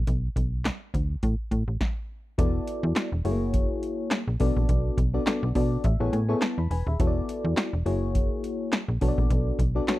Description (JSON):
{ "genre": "early-eighties boogie funk", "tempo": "104 BPM", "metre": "4/4", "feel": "swing 56% on 16ths", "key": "B dorian", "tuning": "A4 = 439 Hz", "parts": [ { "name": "slap-like FM bass", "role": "bass", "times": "0.0-9.8 s", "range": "D#1 to B2", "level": "-26 LUFS", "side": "equal", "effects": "none" }, { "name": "electro analog drum machine", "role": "drums", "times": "0.1-10.0 s", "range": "handclaps, hi-hat, kick drum, snare drum", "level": "-26 LUFS", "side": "equal", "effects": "none" }, { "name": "mellow FM electric piano", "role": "accompaniment", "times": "2.4-10.0 s", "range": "A3 to B5", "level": "-29 LUFS", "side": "left 2 dB", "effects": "chorus" } ], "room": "little or no reverb", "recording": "dry, close 1970s-style studio recording", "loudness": "-24 LUFS", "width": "side -17 dB against mid", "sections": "0.0-2.4 A section; 2.4-10.0 B section", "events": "stop 1.8-2.4; FM electric piano fill 5.3-7.0", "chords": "0.0 Bm; 1.2 N.C.; 2.4 E9sus4; 3.2 F#9; 4.4 Bm7; 5.8 Amaj9; 7.0 E9sus4; 7.9 F#9; 9.0 Bm7", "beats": "| 0.07 0.65 1.23 1.80 | 2.38 2.96 3.54 4.11 | 4.69 5.27 5.84 6.42 | 7.00 7.58 8.15 8.73 | 9.30 9.88" }